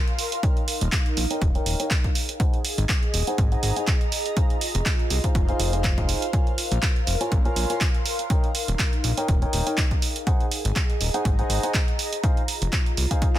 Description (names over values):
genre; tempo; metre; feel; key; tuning
piano house; 122 BPM; 4/4; swing 55% on 16ths; unclear; A4 = 440 Hz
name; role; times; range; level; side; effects
airy breathy pad; texture; 0.0-13.4 s; Eb4 to C6; -31 LUFS; equal; chorus, sidechain pumping
punchy analog drum machine; drums; 0.1-13.4 s; handclaps, hi-hat; -28 LUFS; right 2 dB; none
bright concert grand piano; riff; 0.4-13.4 s; Eb4 to Ab5; -31 LUFS; left 1 dB; sidechain pumping, low-pass filter, tape echo
electronic kick drum; drums; 0.4-13.3 s; none; -22 LUFS; equal; none
fat analog bass; bass; 0.8-13.1 s; Eb1 to C2; -24 LUFS; equal; sidechain pumping
room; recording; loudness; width
digital ambience; dense, heavily limited modern master; -21 LUFS; side -13 dB against mid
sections
0.0-13.4 A section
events
none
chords
0.4 Eb7; 2.2 Ab7; 4.4 Fm7; 6.3 Bbm7; 8.3 Eb7; 10.0 Ab7; 12.2 Fm7